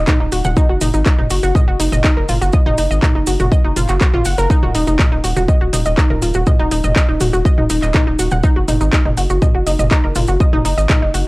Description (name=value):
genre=melodic techno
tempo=122 BPM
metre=4/4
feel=straight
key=Eb minor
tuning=A4 = 439 Hz
part: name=analog pluck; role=arpeggios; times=0.0-11.2 s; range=Eb4 to Gb5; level=-18 LUFS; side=equal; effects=chorus, sidechain pumping, tape echo
part: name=round analog bass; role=bass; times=0.0-11.2 s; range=Eb1 to Ab1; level=-18 LUFS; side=equal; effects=sidechain pumping
part: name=electronic kick drum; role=drums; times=0.1-11.0 s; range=none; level=-13 LUFS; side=equal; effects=none
part: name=house drum kit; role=drums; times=0.1-11.2 s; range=handclaps, hi-hat, toms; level=-21 LUFS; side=equal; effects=none
part: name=maracas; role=percussion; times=0.1-11.2 s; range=none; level=-28 LUFS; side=right 3 dB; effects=none
room=digital ambience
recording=dry, gritty hardware recording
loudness=-12 LUFS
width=side -22 dB against mid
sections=0.0-11.3 A section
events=none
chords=0.0 Ebm; 0.6 N.C.; 4.5 Ebm; 8.4 N.C.